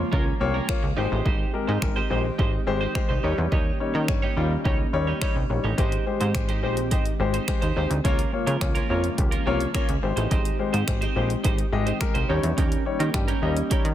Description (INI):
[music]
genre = dance-pop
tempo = 106 BPM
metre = 4/4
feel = straight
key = Ab major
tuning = A4 = 439 Hz
[part]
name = warm grand piano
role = accompaniment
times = 0.0-13.8 s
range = G3 to C6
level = -28 LUFS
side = left 6 dB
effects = sidechain pumping
[part]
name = airy breathy pad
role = sustained chords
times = 0.0-13.9 s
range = Db3 to G4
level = -32 LUFS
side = right 1 dB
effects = chorus, sidechain pumping
[part]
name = plucky analog bass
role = bass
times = 0.0-13.9 s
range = Ab1 to Eb3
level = -26 LUFS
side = equal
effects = sidechain pumping
[part]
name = downlifter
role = sound effects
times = 0.0-1.3 s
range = none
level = barely audible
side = none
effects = none
[part]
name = twelve-string electric guitar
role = riff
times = 0.1-13.9 s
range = Db4 to Db5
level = -31 LUFS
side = right 7 dB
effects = lush chorus
[part]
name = deep house drum kit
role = drums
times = 0.1-13.9 s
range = finger snaps, hi-hat, kick drum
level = -26 LUFS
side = equal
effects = none
[sound]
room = light reverb, digital ambience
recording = none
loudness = -22 LUFS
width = side -12 dB against mid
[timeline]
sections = 0.0-13.9 A section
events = grand piano fill 0.0-1.3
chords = 0.0 Db6; 1.0 Abmaj7; 3.2 Eb7; 5.8 Abmaj7; 8.0 Db6; 10.0 Abmaj7; 12.3 Eb7